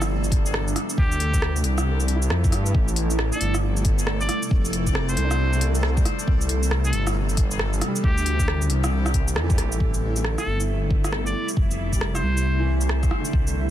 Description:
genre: future garage.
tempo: 136 BPM.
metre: 4/4.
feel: swing 63% on 16ths.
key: A minor.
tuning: A4 = 441 Hz.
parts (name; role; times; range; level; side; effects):
trumpet with straight mute; melody; 0.0-12.8 s; G4 to D5; -32 LUFS; left 1 dB; ping-pong delay.
bright upright piano; accompaniment; 0.0-13.7 s; D3 to G4; -35 LUFS; right 2 dB; sidechain pumping, digital delay.
granular cloud pad; sustained chords; 0.0-13.7 s; C3 to E4; -30 LUFS; equal; built-in reverb, sidechain pumping.
swelling detuned saw bass; bass; 0.0-13.7 s; F1 to G2; -23 LUFS; equal; none.
organic electronic drum kit; drums; 0.0-13.5 s; hi-hat, rim click, shaker; -29 LUFS; right 1 dB; soft clipping on snare.
backwards swelling texture; texture; 0.1-13.7 s; A4 to E5; -38 LUFS; equal; built-in reverb.
electronic kick drum; drums; 0.3-13.4 s; none; -22 LUFS; equal; none.
room: little or no reverb.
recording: dense, heavily limited modern master.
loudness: -20 LUFS.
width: side -12 dB against mid.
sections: 0.0-9.8 A section; 9.8-13.7 B section.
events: none.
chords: 0.0 Cmaj9; 1.0 Dm9; 2.7 Am9; 4.5 Fmaj9; 6.3 Cmaj9; 8.0 Dm9; 9.8 Am9; 11.6 Fmaj9.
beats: 0.10 0.54 | 0.98 1.42 1.86 2.31 | 2.75 3.19 3.63 4.07 | 4.51 4.95 5.39 5.83 | 6.28 6.72 7.16 7.60 | 8.04 8.48 8.92 9.36 | 9.80 10.25 10.69 11.13 | 11.57 12.01 12.45 12.89 | 13.34.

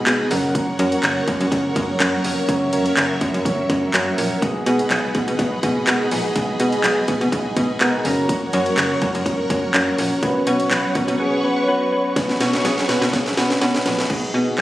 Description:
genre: dance-pop.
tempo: 124 BPM.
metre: 4/4.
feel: straight.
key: B major.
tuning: A4 = 442 Hz.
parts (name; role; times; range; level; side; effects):
soft electric-piano-like synth keys; accompaniment; 0.0-14.6 s; F#3 to A#5; -21 LUFS; equal; chorus, sidechain pumping.
string machine, violas; sustained chords; 0.0-14.1 s; G#4 to C#6; -26 LUFS; equal; ensemble chorus, sidechain pumping.
slap-like FM bass; bass; 0.1-14.6 s; E#1 to B2; -22 LUFS; equal; sidechain pumping.
house drum kit; drums; 0.1-14.6 s; crash cymbal, handclaps, hi-hat, kick drum, snare drum; -22 LUFS; equal; none.
room: light reverb, digital ambience.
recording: recorded on a phone in the room, studio reverb.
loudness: -17 LUFS.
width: side -15 dB against mid.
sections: 0.0-12.2 A section; 12.2-14.1 B section.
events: synth keys fill 0.0-0.6, 7.3-8.3; drums muted 11.2-12.2; drum fill 12.2-14.1.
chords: 0.3 F#; 4.4 B6; 8.1 F#; 10.2 Bsus2; 14.1 B6.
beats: 0.07 | 0.55 1.03 1.52 2.00 | 2.49 2.97 3.45 3.94 | 4.42 4.91 5.39 5.87 | 6.36 6.84 7.33 7.81 | 8.29 8.78 9.26 9.74 | 10.23 10.71 11.20 11.68 | 12.16 12.65 13.13 13.62 | 14.10 14.58.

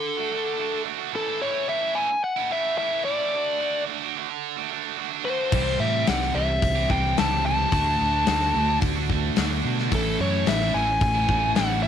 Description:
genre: classic rock.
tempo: 109 BPM.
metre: 4/4.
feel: straight.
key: unclear.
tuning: A4 = 440 Hz.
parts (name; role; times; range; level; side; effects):
biting lead guitar; melody; 0.0-11.9 s; A4 to A5; -24 LUFS; left 2 dB; overdrive.
tight distorted guitar; riff; 0.0-11.9 s; A2 to G4; -29 LUFS; right 16 dB; distortion.
sludgy distorted guitar; riff; 5.5-11.9 s; A2 to G4; -28 LUFS; right 1 dB; overdrive.
fingered electric bass; bass; 5.5-11.9 s; A1 to B2; -27 LUFS; right 1 dB; none.
big rock drum kit; drums; 5.5-11.7 s; crash cymbal, hi-hat, kick drum, snare drum; -27 LUFS; left 4 dB; none.
room: light reverb, small room ambience.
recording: 1960s-style stereo.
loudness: -21 LUFS.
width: side -9 dB against mid.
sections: 0.0-11.9 A section.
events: none.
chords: 0.0 D; 1.1 A; 3.3 D; 5.5 C6; 7.7 D; 9.9 A.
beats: 0.04 0.58 | 1.13 1.68 2.23 2.78 | 3.33 3.88 4.43 4.98 | 5.53 6.08 6.63 7.17 | 7.72 8.27 8.82 9.37 | 9.92 10.47 11.02 11.56.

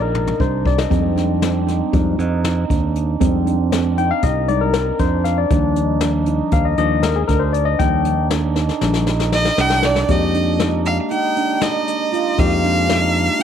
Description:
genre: progressive instrumental, band music in an uneven meter.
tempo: 235 BPM (eighths).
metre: 9/8.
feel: straight.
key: F dorian.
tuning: A4 = 435 Hz.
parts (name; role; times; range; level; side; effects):
barky tine electric piano; accompaniment; 0.0-13.4 s; F3 to G5; -21 LUFS; left 11 dB; overdrive.
handpan; arpeggios; 0.0-13.4 s; C4 to F4; -22 LUFS; right 10 dB; none.
fingered electric bass; bass; 0.0-13.3 s; Bb1 to F2; -20 LUFS; right 1 dB; none.
jazz brush drum kit; drums; 0.1-13.4 s; hi-hat, kick drum, snare drum, toms; -22 LUFS; left 2 dB; none.
clear violin; melody; 9.3-13.4 s; D5 to G5; -19 LUFS; right 1 dB; slapback echo.
room: light reverb, small room ambience.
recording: 1960s-style stereo with parts hard left and right.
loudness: -15 LUFS.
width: side -8 dB against mid.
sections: 0.0-10.1 A section; 10.1-13.4 B section.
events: drum fill 0.0-0.9, 8.6-10.1; tine electric piano solo 0.0-10.1.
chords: 0.0 Ebmaj7(no3); 0.9 Fm7; 5.5 Ebmaj7; 10.1 Fm11.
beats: 0.14 0.40 0.66 | 0.91 1.17 1.42 1.68 1.93 2.19 2.44 2.70 2.96 | 3.21 3.47 3.72 3.98 4.23 4.49 4.74 5.00 5.25 | 5.51 5.76 6.02 6.27 6.53 6.78 7.04 7.29 7.55 | 7.80 8.06 8.31 8.57 8.82 9.07 9.33 9.59 9.84 | 10.09 10.35 10.60 10.86 11.11 11.37 11.62 11.88 12.13 | 12.38 12.64 12.89 13.15 13.40.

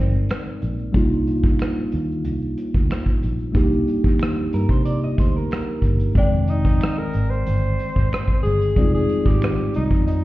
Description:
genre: R&B, neo-soul.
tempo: 92 BPM.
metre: 4/4.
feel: swing 53% on 16ths.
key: F dorian.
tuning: A4 = 441 Hz.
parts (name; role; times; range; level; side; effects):
breathy tenor saxophone; melody; 0.0-0.3, 6.2-10.2 s; C4 to C5; -25 LUFS; equal; none.
mellow tine electric piano; accompaniment; 0.0-10.2 s; Eb3 to G5; -24 LUFS; equal; slow stereo tremolo.
vintage muted fingered electric bass; bass; 0.0-10.2 s; F1 to C3; -22 LUFS; equal; none.
egg shaker and finger snaps; percussion; 0.1-10.2 s; none; -44 LUFS; right 4 dB; none.
unplugged drum kit; drums; 0.3-10.2 s; hi-hat, kick drum, rim click; -21 LUFS; equal; none.
electric guitar through a small old amp; second line; 4.5-6.1 s; Bb4 to Eb5; -32 LUFS; right 2 dB; none.
room: light reverb.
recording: heard muffled through a wall, stone room reverb, EQ.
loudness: -18 LUFS.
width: side -17 dB against mid.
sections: 0.0-10.2 A section.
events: none.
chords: 0.0 Fm9 (rootless); 0.9 Cm9; 6.2 Fm9.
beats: 0.28 | 0.94 1.59 2.24 2.89 | 3.55 4.20 4.85 5.50 | 6.15 6.81 7.46 8.11 | 8.76 9.41 10.07.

